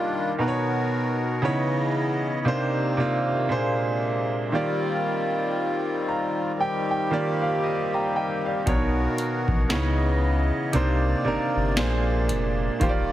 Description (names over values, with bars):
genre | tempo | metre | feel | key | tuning
contemporary R&B | 58 BPM | 4/4 | swing 58% on 16ths | Eb major | A4 = 440 Hz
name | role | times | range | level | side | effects
clear concert grand piano | accompaniment | 0.0-13.1 s | Bb2 to Bb5 | -24 LUFS | right 2 dB | none
accordion | sustained chords | 0.0-13.1 s | C3 to Eb5 | -28 LUFS | left 2 dB | light tremolo tuning
saturated sub bass | bass | 8.7-13.1 s | Eb1 to Db2 | -25 LUFS | equal | none
booming analog drum machine | drums | 8.7-13.1 s | hi-hat, kick drum, snare drum | -26 LUFS | equal | none
room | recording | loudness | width
light reverb | heavily compressed radio sound, multiband compression | -22 LUFS | side -13 dB against mid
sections
0.0-13.1 A section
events
grand piano fill 5.6-8.7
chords
0.4 Bmaj7; 1.4 Dbm9; 2.5 Cm9; 3.5 Bb9; 4.5 Ebmaj9; 8.7 Bmaj7; 9.7 Dbm9; 10.7 Cm9; 11.8 Bb9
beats
| 0.39 1.43 2.46 3.50 | 4.53 5.57 6.60 7.64 | 8.67 9.71 10.74 11.77 | 12.81